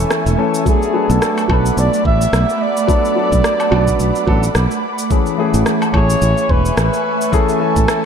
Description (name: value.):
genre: sunset chillout.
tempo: 108 BPM.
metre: 4/4.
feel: swing 57% on 16ths.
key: unclear.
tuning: A4 = 441 Hz.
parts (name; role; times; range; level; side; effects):
warm concert grand piano; accompaniment; 0.0-8.1 s; E3 to G#5; -20 LUFS; moving between left 9 dB and right 5 dB; auto-pan, digital delay, shimmer reverb.
ethereal airy pad; sustained chords; 0.0-8.1 s; A3 to D6; -20 LUFS; right 2 dB; ensemble chorus, built-in reverb, shimmer reverb.
modern bright fingered electric bass; bass; 0.0-7.8 s; E1 to B1; -16 LUFS; equal; tube saturation.
electronic rim click, cabasa and woodblock; drums; 0.1-8.0 s; none; -22 LUFS; equal; none.
mellow flugelhorn; melody; 0.7-8.1 s; G#4 to E5; -19 LUFS; right 1 dB; digital delay, shimmer reverb.
electronic kick drum; drums; 0.7-7.9 s; none; -17 LUFS; equal; none.
room: moderate lush hall reverb, RT60 2.0 s.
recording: dark, warm production.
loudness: -13 LUFS.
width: side -7 dB against mid.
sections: 0.0-8.1 A section.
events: none.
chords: 0.0 Amaj7; 0.7 Bm7; 5.1 Amaj7.